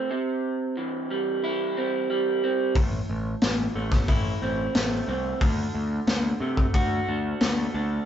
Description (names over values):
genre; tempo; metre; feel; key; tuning
quiet-loud alternative rock; 90 BPM; 4/4; straight; A minor; A4 = 439 Hz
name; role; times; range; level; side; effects
electric guitar through a small old amp; arpeggios; 0.0-8.1 s; A2 to F#4; -27 LUFS; right 3 dB; none
growling picked electric bass; bass; 2.8-8.0 s; A1 to C3; -29 LUFS; left 1 dB; overdrive
raw garage drum kit; drums; 2.8-7.6 s; hi-hat, kick drum, snare drum; -24 LUFS; left 1 dB; none
room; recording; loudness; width
little or no reverb; band playing live in one room, nothing above 7.7 kHz; -23 LUFS; side -9 dB against mid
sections
0.0-8.1 A section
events
none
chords
0.1 C; 2.8 Am; 5.4 D